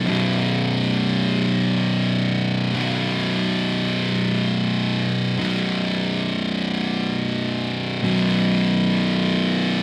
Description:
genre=metal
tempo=free time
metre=none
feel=none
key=unclear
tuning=A4 = 440 Hz
part: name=fuzz guitar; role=solo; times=0.0-9.8 s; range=B1 to B2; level=-21 LUFS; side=equal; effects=distortion
room=wet small room reverb, RT60 0.6 s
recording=rough rehearsal-room recording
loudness=-21 LUFS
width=mono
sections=0.1-9.8 A section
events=none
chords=0.1 B5

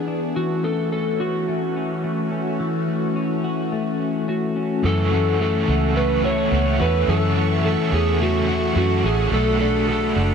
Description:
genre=dream pop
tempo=107 BPM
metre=4/4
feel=straight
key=F# minor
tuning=A4 = 438 Hz
part: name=phased analog pad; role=sustained chords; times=0.0-10.3 s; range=E3 to C#6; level=-27 LUFS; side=left 1 dB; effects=phaser, chorus
part: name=clean electric guitar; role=arpeggios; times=0.0-10.3 s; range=E3 to G#4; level=-24 LUFS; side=left 3 dB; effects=wide subtle chorus, tape echo
part: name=electric slide guitar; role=melody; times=0.4-10.3 s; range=F#4 to C#5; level=-25 LUFS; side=equal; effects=tape echo
part: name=crunchy overdriven guitar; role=accompaniment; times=4.8-10.3 s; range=F#2 to F#4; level=-26 LUFS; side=right 3 dB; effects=tremolo, lush chorus
part: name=vintage muted fingered electric bass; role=bass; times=4.8-10.3 s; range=F#1 to F#2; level=-22 LUFS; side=right 1 dB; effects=none
room=moderate huge ambient reverb, RT60 8.0 s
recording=dark, warm production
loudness=-18 LUFS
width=side -6 dB against mid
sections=0.0-4.8 A section; 4.8-10.3 B section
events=none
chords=0.3 F#m7; 9.3 Bm7

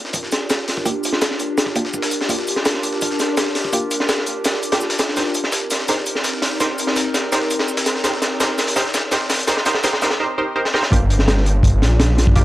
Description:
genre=drum and bass, jungle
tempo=167 BPM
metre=4/4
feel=straight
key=G minor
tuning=A4 = 441 Hz
part: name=warbly tape-like pad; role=sustained chords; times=0.0-12.4 s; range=Bb3 to Bb4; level=-24 LUFS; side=equal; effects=chorus, built-in reverb, phaser
part: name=breakbeat sampler-style drum kit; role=drums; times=0.0-10.1 s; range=hi-hat, shaker, snare drum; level=-26 LUFS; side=left 1 dB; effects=high-pass filter on perc, high-pass filter on snare, high-pass filter on hats
part: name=crunchy breakbeat drum kit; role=drums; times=0.1-12.4 s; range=hi-hat, kick drum, snare drum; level=-19 LUFS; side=equal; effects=high-pass filter on kick, high-pass filter on hats, high-pass filter on snare, high-pass filter on room
part: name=filtered dub chord stab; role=stabs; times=0.9-12.4 s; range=Bb3 to C5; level=-24 LUFS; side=right 2 dB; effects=chorus, cassette tape, dub echo
part: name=detuned saw bass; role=bass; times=10.9-12.4 s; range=G1 to Bb1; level=-15 LUFS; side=equal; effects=none
room=light reverb, studio reverb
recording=dry, gritty hardware recording, vinyl crackle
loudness=-16 LUFS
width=side -16 dB against mid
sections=0.0-10.9 A section; 10.9-12.4 B section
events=build-up 0.0-10.9; filter sweep on synth stab 0.0-10.9; drum fill 5.2-10.2, 10.6; drop 10.9-12.4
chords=0.0 Gm7; 5.2 Cm7; 10.9 Gm7

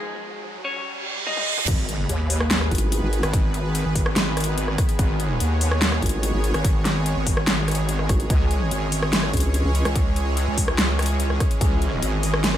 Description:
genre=heavy wobble dubstep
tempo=145 BPM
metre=4/4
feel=half-time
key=G# minor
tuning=A4 = 439 Hz
part: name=clean electric guitar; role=melody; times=0.0-1.6 s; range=G#3 to D#5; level=-31 LUFS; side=left 4 dB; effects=spring reverb, tape echo
part: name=riser, reverse cymbal and impact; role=sound effects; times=0.0-3.3 s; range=none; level=-28 LUFS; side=right 2 dB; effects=none
part: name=dubstep drum kit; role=drums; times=1.3-12.6 s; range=crash cymbal, hi-hat, rim click, snare drum, toms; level=-25 LUFS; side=equal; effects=studio reverb
part: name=supersaw pad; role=sustained chords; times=1.7-12.6 s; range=D#3 to D#5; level=-28 LUFS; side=right 2 dB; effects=sidechain pumping
part: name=wobble bass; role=bass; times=1.7-12.6 s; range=G#1 to D#2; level=-23 LUFS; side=equal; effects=chorus, overdrive
part: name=electronic kick drum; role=drums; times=1.7-11.7 s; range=none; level=-22 LUFS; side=equal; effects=studio reverb
part: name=vowel-sweep wobble bass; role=bass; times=2.7-3.2, 6.0-9.8 s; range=G#1 to C#2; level=-22 LUFS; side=equal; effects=chorus, overdrive
room=little or no reverb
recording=high-pass filter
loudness=-19 LUFS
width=side -11 dB against mid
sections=0.0-1.7 A section; 1.7-12.6 B section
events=build-up 0.0-1.7; riser 0.0-1.7; filter sweep 0.0-1.7; break 0.0-1.7; reverse cymbal 0.9-1.7; drum fill 1.3-1.7; drop 1.7-12.6; impact 1.7-3.3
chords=0.0 C#5; 1.7 G#m; 8.3 C#m

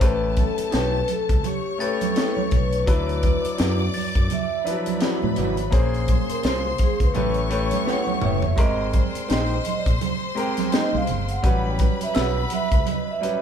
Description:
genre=lush 1970s-style soul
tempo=84 BPM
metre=4/4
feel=swing 58% on 16ths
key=unclear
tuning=A4 = 440 Hz
part: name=vibraphone with soft mallets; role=melody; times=0.0-13.4 s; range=G4 to G5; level=-28 LUFS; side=right 1 dB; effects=none
part: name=clear studio string section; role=second line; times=0.0-13.4 s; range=A4 to D6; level=-30 LUFS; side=left 5 dB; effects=none
part: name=clear baby grand piano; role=accompaniment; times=0.0-13.4 s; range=F3 to C5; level=-29 LUFS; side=left 2 dB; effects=none
part: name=modern bright fingered electric bass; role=bass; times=0.0-12.8 s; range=Gb1 to A2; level=-27 LUFS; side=left 1 dB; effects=none
part: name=tight funk drum kit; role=drums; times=0.0-13.4 s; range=hi-hat, kick drum, snare drum, toms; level=-23 LUFS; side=equal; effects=none
part: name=congas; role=percussion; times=0.4-13.2 s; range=none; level=-30 LUFS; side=right 8 dB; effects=none
part: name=electric guitar through a small old amp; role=riff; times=0.7-12.4 s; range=G3 to D5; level=-29 LUFS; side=right 2 dB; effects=none
part: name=glockenspiel with brass mallets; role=texture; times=1.8-4.9, 12.1-13.1 s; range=E6 to A6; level=-36 LUFS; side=left 2 dB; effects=none
room=light reverb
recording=band playing live in one room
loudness=-20 LUFS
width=side -8 dB against mid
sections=0.0-13.4 A section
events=vibraphone solo 0.0-13.4; drum fill 7.9-8.6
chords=0.0 A9; 2.9 D69; 5.7 Bbm9; 7.2 A9; 8.6 Abmaj9; 11.4 A13

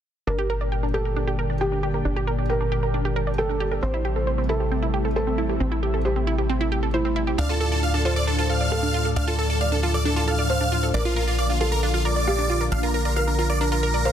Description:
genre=uplifting trance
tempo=135 BPM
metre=4/4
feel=straight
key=unclear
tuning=A4 = 440 Hz
part: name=felt-muted upright piano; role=second line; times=0.3-14.1 s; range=E4 to D5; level=-29 LUFS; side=right 1 dB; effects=digital delay
part: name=analog string pad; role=sustained chords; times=0.3-14.1 s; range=A2 to G4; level=-28 LUFS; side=left 1 dB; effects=ensemble chorus
part: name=wide unison pluck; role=arpeggios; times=0.3-14.1 s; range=C4 to G5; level=-28 LUFS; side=right 3 dB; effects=digital delay
part: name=tight sequencer bass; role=bass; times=0.3-14.1 s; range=G1 to D2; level=-25 LUFS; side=equal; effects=none
part: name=electronic hi-hat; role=drums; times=0.3-14.1 s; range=none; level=barely audible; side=none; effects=none
part: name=big supersaw lead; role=melody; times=7.4-14.1 s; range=F4 to F5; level=-25 LUFS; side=equal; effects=digital delay
room=light reverb, digital ambience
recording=dense, heavily limited modern master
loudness=-21 LUFS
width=side -9 dB against mid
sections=0.3-14.1 A section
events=filter sweep on synth arpeggio sound 0.3-14.1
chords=0.3 Gm; 3.8 Am7; 7.4 Dm; 10.9 Bb

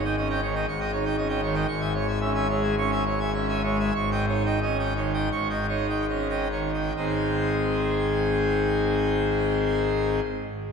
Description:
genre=classical, organ toccata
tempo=66-119 BPM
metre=4/4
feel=straight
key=unclear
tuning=A4 = 439 Hz
part: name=pipe organ, full organ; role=solo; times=0.0-10.2 s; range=G#1 to C#6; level=-23 LUFS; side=equal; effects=none
room=wet church reverb, RT60 3.3 s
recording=none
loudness=-23 LUFS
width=side -6 dB against mid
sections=0.0-7.0 A section; 7.0-10.7 B section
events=slowing down 0.7-7.0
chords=0.0 D#7/G#; 1.7 C#m/G#; 4.0 D#7/G#; 7.0 G#

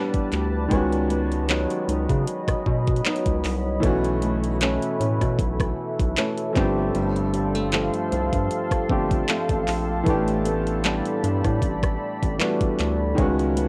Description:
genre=contemporary R&B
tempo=77 BPM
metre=4/4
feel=swing 54% on 16ths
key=unclear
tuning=A4 = 436 Hz
part: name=warm grand piano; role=accompaniment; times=0.0-13.7 s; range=D#3 to G4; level=-30 LUFS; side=equal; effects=cassette tape
part: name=deep dark ambient pad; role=sustained chords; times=0.0-13.7 s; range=F#4 to C#6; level=-33 LUFS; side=equal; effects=chorus, built-in reverb, cassette tape
part: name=flamenco guitar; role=arpeggios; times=0.0-13.7 s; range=G2 to D#4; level=-30 LUFS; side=equal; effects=cassette tape, analog delay
part: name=smooth R&B drum kit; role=drums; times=0.1-13.7 s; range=handclaps, hi-hat, kick drum, rim click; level=-28 LUFS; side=equal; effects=cassette tape
part: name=round analog bass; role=bass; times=0.3-13.7 s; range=G1 to C#3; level=-29 LUFS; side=equal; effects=none
room=little or no reverb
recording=home recording on cassette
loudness=-23 LUFS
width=mono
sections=0.0-13.7 A section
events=none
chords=0.0 A9sus4; 0.7 C#9sus4; 3.8 B9sus4; 6.6 G9sus4; 10.1 A9sus4; 13.2 C#9sus4

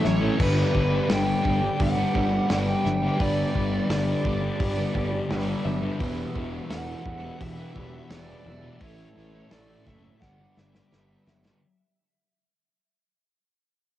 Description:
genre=rock, shoegaze and dream pop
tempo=86 BPM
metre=4/4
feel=straight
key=G lydian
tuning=A4 = 439 Hz
part: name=smooth overdriven lead guitar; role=melody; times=0.0-11.2 s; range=B4 to G5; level=-31 LUFS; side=right 1 dB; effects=cassette tape, analog delay
part: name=brassy analog pad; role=sustained chords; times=0.0-11.6 s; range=G4 to E6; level=-37 LUFS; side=right 3 dB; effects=chorus
part: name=direct-recorded clean electric guitar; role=arpeggios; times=0.0-11.6 s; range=G4 to E5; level=-39 LUFS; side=left 7 dB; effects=wide subtle chorus, analog delay
part: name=crunchy overdriven guitar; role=riff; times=0.0-11.6 s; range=E2 to A3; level=-37 LUFS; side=left 2 dB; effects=none
part: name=overdriven semi-hollow guitar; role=riff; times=0.0-11.6 s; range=G2 to E4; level=-33 LUFS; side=right 7 dB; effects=reverse reverb
part: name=thick fuzz guitar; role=riff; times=0.0-11.6 s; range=E2 to A3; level=-29 LUFS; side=left 4 dB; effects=distortion, wide subtle chorus
part: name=fuzz fingered electric bass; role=bass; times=0.0-11.5 s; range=E1 to A1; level=-29 LUFS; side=equal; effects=overdrive
part: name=loose indie drum kit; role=drums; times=0.0-11.6 s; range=crash cymbal, hi-hat, kick drum, snare drum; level=-30 LUFS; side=equal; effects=cassette tape
room=small room reverb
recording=home recording on cassette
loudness=-22 LUFS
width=side -13 dB against mid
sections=0.0-11.6 A section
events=fade-out 0.0-11.6; drum fill 10.2-11.6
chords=0.4 G; 6.0 Emadd9; 8.8 A; 10.2 G

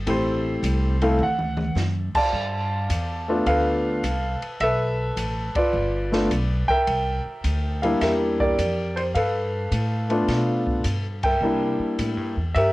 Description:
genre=jazz piano trio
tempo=106 BPM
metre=4/4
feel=swing 68% on 8ths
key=G mixolydian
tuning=A4 = 439 Hz
part: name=upright bass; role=bass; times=0.0-12.7 s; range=G1 to C3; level=-26 LUFS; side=equal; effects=none
part: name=warm grand piano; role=melody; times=0.1-12.7 s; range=G3 to A5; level=-22 LUFS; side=equal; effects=cassette tape
part: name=open jazz drum kit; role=drums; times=0.1-12.7 s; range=crash cymbal, hi-hat, kick drum, ride cymbal, snare drum, toms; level=-32 LUFS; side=equal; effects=cassette tape
room=moderate studio reverb, RT60 0.7 s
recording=home recording on cassette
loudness=-21 LUFS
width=side -19 dB against mid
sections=0.0-2.3 A section; 2.3-12.7 B section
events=grand piano solo 0.0-2.3; drum fill 1.2-1.8; band accent 5.5, 11.1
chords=0.1 Am7; 1.2 D; 2.3 G9; 6.9 C9; 9.1 G9; 11.4 C9

